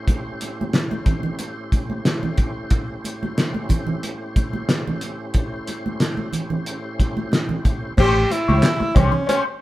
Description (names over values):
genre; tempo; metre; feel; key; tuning
funk; 91 BPM; 4/4; straight; A mixolydian; A4 = 441 Hz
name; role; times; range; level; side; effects
tonewheel organ; sustained chords; 0.0-7.9 s; A2 to B#4; -31 LUFS; equal; overdrive, chorus vibrato, slow rotary speaker
cloth-damped thuddy drum kit; drums; 0.1-9.4 s; crash cymbal, handclaps, hi-hat, kick drum, snare drum; -20 LUFS; equal; none
congas; percussion; 0.1-9.4 s; none; -27 LUFS; right 2 dB; none
mellow tenor saxophone; melody; 8.0-9.4 s; C#4 to G4; -20 LUFS; equal; none
clean electric guitar; accompaniment; 8.0-9.5 s; C#4 to C#5; -24 LUFS; left 4 dB; wah
fingered electric bass; bass; 8.0-9.1 s; A1 to C#2; -20 LUFS; equal; none
room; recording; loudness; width
moderate stone room reverb, RT60 1.1 s; band playing live in one room; -19 LUFS; side -16 dB against mid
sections
0.0-8.0 A section; 8.0-9.6 B section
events
none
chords
0.0 A7#9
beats
| 0.07 0.73 1.39 2.05 | 2.71 3.37 4.03 4.69 | 5.35 6.00 6.66 7.32 | 7.97 8.63 9.28